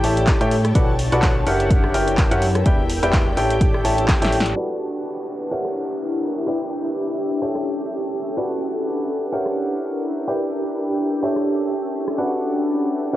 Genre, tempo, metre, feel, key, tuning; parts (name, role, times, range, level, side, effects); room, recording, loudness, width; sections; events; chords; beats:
piano house; 126 BPM; 4/4; swing 56% on 16ths; B minor; A4 = 440 Hz
clear upright piano; riff; 0.0-13.2 s; F#4 to A5; -24 LUFS; equal; sidechain pumping, cassette tape
fat analog bass; bass; 0.0-4.5 s; E1 to A2; -23 LUFS; equal; sidechain pumping
punchy analog drum machine; drums; 0.0-13.2 s; handclaps, hi-hat, rim click, snare drum, tambourine; -27 LUFS; equal; cassette tape
ethereal airy pad; texture; 0.0-13.2 s; E4 to A5; -24 LUFS; left 1 dB; ensemble chorus, built-in reverb, sidechain pumping, cassette tape
electronic kick drum; drums; 0.3-4.2 s; -19 LUFS; equal; cassette tape
downlifter; sound effects; 4.8-8.4 s; -40 LUFS; equal
moderate spring reverb, RT60 1.2 s, digital ambience; home recording on cassette, low-pass filter; -18 LUFS; side -14 dB against mid
0.0-4.6 A section; 4.6-13.2 B section
drum fill 4.1-4.6; band accent 4.4; filter sweep 4.6-13.2
0.0 A7; 0.8 Bm7; 1.7 F#7b9; 2.7 Em7; 3.6 A7; 4.6 Bm7; 5.5 F#7b9; 6.5 Em7; 7.4 A7; 8.4 Bm7; 9.3 F#7b9; 10.3 Em7; 11.2 A7; 12.2 Bm7
0.28 | 0.75 1.23 1.71 2.18 | 2.66 3.13 3.61 4.09 | 4.56 5.04 5.51 5.99 | 6.47 6.94 7.42 7.90 | 8.37 8.85 9.32 9.80 | 10.28 10.75 11.23 11.71 | 12.18 12.66 13.13